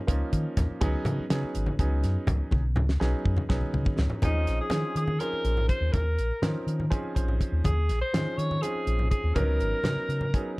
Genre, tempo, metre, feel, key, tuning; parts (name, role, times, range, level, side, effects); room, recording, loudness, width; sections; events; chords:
electric jazz fusion; 246 BPM (eighths); 7/8; straight; Eb minor; A4 = 442 Hz
bright baby grand piano; accompaniment; 0.1-10.6 s; F3 to C5; -33 LUFS; right 1 dB
fingered electric bass; bass; 0.1-10.3 s; Ab1 to Eb3; -27 LUFS; equal
damped 70s drum kit; drums; 0.1-10.5 s; hi-hat, kick drum, snare drum, toms; -28 LUFS; equal
congas; percussion; 0.3-10.4 s; -34 LUFS; equal
clear alto saxophone; melody; 4.2-10.6 s; Eb4 to Db5; -31 LUFS; equal
little or no reverb; dark, warm production; -24 LUFS; side -23 dB against mid
0.0-4.2 A section; 4.2-10.6 B section
drum fill 2.5-4.2; grand piano fill 6.9-7.6, 10.3
0.0 Eb7sus2; 0.8 Db9sus4; 4.2 Eb13sus4; 9.4 Db13sus4